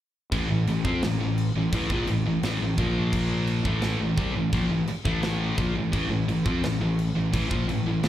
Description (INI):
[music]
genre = heavy metal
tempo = 86 BPM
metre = 4/4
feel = straight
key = A minor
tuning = A4 = 440 Hz
[part]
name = scooped high-gain guitar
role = riff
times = 0.3-8.1 s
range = A2 to C4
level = -31 LUFS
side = right 10 dB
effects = distortion
[part]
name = sludgy distorted guitar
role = riff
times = 0.3-8.1 s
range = A2 to C4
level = -26 LUFS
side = left 3 dB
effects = overdrive
[part]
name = fuzz fingered electric bass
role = bass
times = 0.3-8.1 s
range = A1 to F2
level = -30 LUFS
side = right 1 dB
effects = overdrive
[part]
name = tight metal drum kit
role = drums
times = 0.3-8.1 s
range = crash cymbal, kick drum, snare drum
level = -30 LUFS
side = right 1 dB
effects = none
[sound]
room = little or no reverb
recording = live gig heard through the venue's PA, club ambience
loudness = -23 LUFS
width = side -12 dB against mid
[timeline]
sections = 0.3-8.1 A section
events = none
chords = 0.3 Am; 2.8 Bb5; 3.6 Am